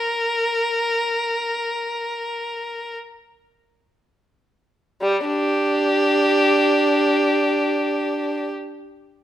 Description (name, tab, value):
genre	classical, free, expressive piece for unaccompanied violin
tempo	free time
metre	none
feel	none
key	G minor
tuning	A4 = 439 Hz
part	rich violin	solo	0.0-8.5 s	G3 to Bb4	-19 LUFS	equal	none
room	moderate recital hall reverb, RT60 1.3 s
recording	none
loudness	-18 LUFS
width	side -12 dB against mid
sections	0.0-5.0 A section; 5.0-9.2 B section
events	slowing down 0.0-5.0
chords	none